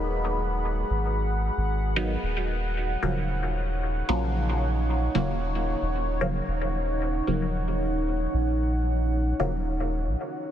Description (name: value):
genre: techno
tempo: 113 BPM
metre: 4/4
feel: straight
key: unclear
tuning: A4 = 440 Hz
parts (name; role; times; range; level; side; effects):
- deep dark ambient pad; sustained chords; 0.0-10.5 s; D#4 to B5; -30 LUFS; equal; chorus, built-in reverb
- filtered dub chord stab; stabs; 0.0-9.6 s; C#3 to D#4; -31 LUFS; equal; phaser, vintage 12-bit sampler grit, dub echo
- soft dub sub bass; bass; 0.0-10.2 s; D#1 to A#1; -27 LUFS; equal; none
room: moderate huge ambient reverb, RT60 8.1 s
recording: dense, heavily limited modern master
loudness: -24 LUFS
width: side -10 dB against mid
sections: 0.0-10.5 A section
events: none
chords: 0.0 G#m7; 2.2 D#m7